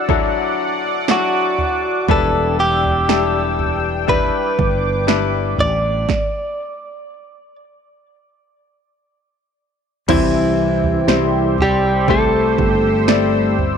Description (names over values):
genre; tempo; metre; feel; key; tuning
pop ballad; 60 BPM; 4/4; straight; unclear; A4 = 439 Hz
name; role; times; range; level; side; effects
bright grand piano; accompaniment; 0.0-13.8 s; C3 to D5; -21 LUFS; left 13 dB; none
sweeping resonant pad; sustained chords; 0.0-13.8 s; G4 to E6; -23 LUFS; right 2 dB; chorus
house drum kit; drums; 0.1-13.8 s; crash cymbal, kick drum, snare drum, toms; -21 LUFS; right 4 dB; none
direct-recorded clean electric guitar; melody; 1.1-13.6 s; E3 to D5; -18 LUFS; right 1 dB; none
sustaining fretless electric bass; bass; 2.1-13.8 s; E1 to C2; -21 LUFS; right 1 dB; analog chorus
room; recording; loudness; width
little or no reverb; 1960s-style stereo; -14 LUFS; side -7 dB against mid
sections
0.0-10.1 A section; 10.1-13.8 B section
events
stop 6.1-10.1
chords
0.0 Dadd9; 2.1 Em7; 6.1 N.C.; 10.1 C